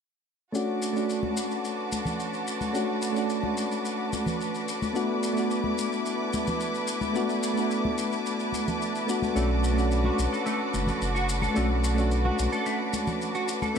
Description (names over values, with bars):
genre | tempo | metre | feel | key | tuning
sunset chillout | 109 BPM | 4/4 | straight | B minor | A4 = 437 Hz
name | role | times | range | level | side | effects
soft electric-piano-like synth keys | accompaniment | 0.5-13.8 s | A3 to F#4 | -28 LUFS | moving between left 3 dB and right 4 dB | chorus, auto-pan, low-pass filter, ping-pong delay, shimmer reverb
rich studio string section | sustained chords | 0.5-13.8 s | E4 to D6 | -32 LUFS | equal | shimmer reverb
shaker | drums | 0.5-13.8 s | none | -38 LUFS | left 3 dB | none
congas | percussion | 1.2-13.7 s | none | -34 LUFS | left 3 dB | none
clean electric guitar | arpeggios | 9.4-13.8 s | A3 to A4 | -32 LUFS | right 2 dB | ensemble chorus, ping-pong delay, shimmer reverb
warm sub bass | bass | 9.4-13.8 s | F#1 to B1 | -26 LUFS | equal | none
room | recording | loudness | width
moderate lush hall reverb, RT60 2.3 s | bright 1980s-style digital production | -25 LUFS | side -7 dB against mid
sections
0.6-13.8 A section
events
none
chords
0.6 Bm7; 5.0 E7sus4; 9.4 Bm7